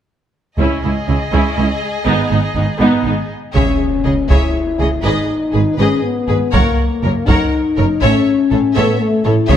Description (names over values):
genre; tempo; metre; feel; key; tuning
cinematic, epic orchestral film score; 121 BPM; 3/4; straight; C# minor; A4 = 439 Hz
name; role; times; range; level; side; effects
rich chamber violin section; second line; 0.6-9.6 s; G#4 to D#5; -24 LUFS; left 2 dB; none
rich symphonic viola section; accompaniment; 0.6-9.6 s; B3 to A#4; -20 LUFS; right 1 dB; none
clear symphonic double bass section; bass; 0.6-9.6 s; F#1 to C#2; -20 LUFS; right 3 dB; none
rich chamber cello section; bass; 0.6-9.6 s; C#2 to C#3; -20 LUFS; right 3 dB; none
taiko ensemble; drums; 0.6-9.6 s; none; -17 LUFS; equal; none
clear studio violin section; melody; 3.5-9.6 s; B4 to F#5; -26 LUFS; left 3 dB; none
dark French horn section; sustained chords; 3.6-9.6 s; A3 to E4; -16 LUFS; left 5 dB; none
impact; sound effects; 3.6-5.0 s; none; -26 LUFS; equal; none
room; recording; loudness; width
light reverb; none; -13 LUFS; side -10 dB against mid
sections
0.6-3.6 A section; 3.6-9.6 B section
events
impact 3.6-5.0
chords
0.6 C#madd9; 2.1 G#m; 3.6 C#m; 5.0 G#m; 6.5 F#; 8.0 A